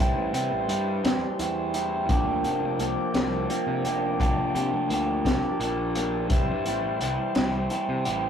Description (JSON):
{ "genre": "psychedelic rock", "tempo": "57 BPM (dotted quarters)", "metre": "6/8", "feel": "straight", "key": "C mixolydian", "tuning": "A4 = 439 Hz", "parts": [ { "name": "mellow tonewheel organ", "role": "sustained chords", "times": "0.0-8.3 s", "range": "E4 to D6", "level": "-33 LUFS", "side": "right 4 dB", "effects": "slow rotary speaker" }, { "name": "electric guitar through a small old amp", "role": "riff", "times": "0.0-8.3 s", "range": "E3 to G4", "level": "-27 LUFS", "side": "left 1 dB", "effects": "phaser" }, { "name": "fuzz picked electric bass", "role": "bass", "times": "0.0-8.3 s", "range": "F1 to C3", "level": "-32 LUFS", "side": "equal", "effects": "overdrive" }, { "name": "crunchy breakbeat drum kit", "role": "drums", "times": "0.3-8.2 s", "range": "hi-hat, kick drum, snare drum", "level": "-27 LUFS", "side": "equal", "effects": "none" } ], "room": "moderate small room reverb, RT60 0.5 s", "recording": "rough rehearsal-room recording", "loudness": "-23 LUFS", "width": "side -8 dB against mid", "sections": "0.0-8.3 A section", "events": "none", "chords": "0.0 C; 2.1 Gm7; 6.3 C" }